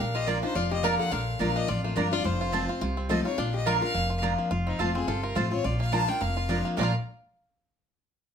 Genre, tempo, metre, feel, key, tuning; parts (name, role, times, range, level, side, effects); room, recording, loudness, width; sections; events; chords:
bluegrass; 212 BPM; 4/4; swing 56% on 8ths; Bb major; A4 = 440 Hz
bluegrass banjo; melody; 0.0-7.0 s; Bb3 to Bb4; -35 LUFS; right 4 dB
clear fiddle; melody; 0.0-6.9 s; Eb4 to A5; -33 LUFS; left 3 dB
lap resonator guitar; second line; 0.0-4.2 s; A3 to Bb4; -33 LUFS; left 7 dB
picked steel-string acoustic guitar; accompaniment; 0.0-6.9 s; F2 to F4; -30 LUFS; left 2 dB
upright bass; bass; 0.0-6.9 s; F1 to C2; -31 LUFS; equal
mandolin; stabs; 0.3-6.9 s; Bb3 to Bb5; -30 LUFS; right 7 dB
moderate studio reverb, RT60 0.6 s; -25 LUFS; side -7 dB against mid
0.0-4.5 A section; 4.5-6.8 B section; 6.8-7.9 C section
0.0 Bb; 2.2 F; 3.4 Bb; 4.5 F; 5.6 Bb